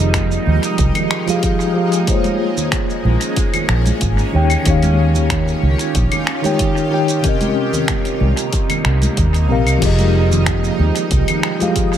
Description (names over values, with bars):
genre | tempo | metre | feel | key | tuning
sunset chillout | 93 BPM | 4/4 | straight | F minor | A4 = 440 Hz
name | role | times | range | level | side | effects
mellow tine electric piano | accompaniment | 0.0-12.0 s | C3 to G5 | -19 LUFS | moving between left 4 dB and right 6 dB | medium stereo tremolo, auto-pan, analog delay
shimmering ambient pad | sustained chords | 0.0-12.0 s | C3 to G5 | -23 LUFS | equal | chorus, built-in reverb, phaser
vintage muted fingered electric bass | bass | 0.0-11.2 s | F1 to Eb2 | -15 LUFS | equal | none
deep house drum kit | drums | 0.1-12.0 s | claves, crash cymbal, finger snaps, hi-hat, shaker | -23 LUFS | left 1 dB | analog delay
electronic kick drum | drums | 0.1-11.9 s | none | -20 LUFS | equal | none
congas | percussion | 0.5-11.7 s | none | -26 LUFS | right 2 dB | analog delay
room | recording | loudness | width
light reverb, digital ambience | echo-heavy mix | -14 LUFS | side -10 dB against mid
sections
0.0-12.0 A section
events
none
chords
0.0 Fm9; 2.1 Bbm9; 4.3 Eb9; 7.2 Cm7; 9.8 Fm9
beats
0.15 0.79 1.44 | 2.08 2.73 3.37 4.02 | 4.66 5.31 5.95 6.60 | 7.24 7.89 8.53 9.18 | 9.82 10.47 11.11 11.76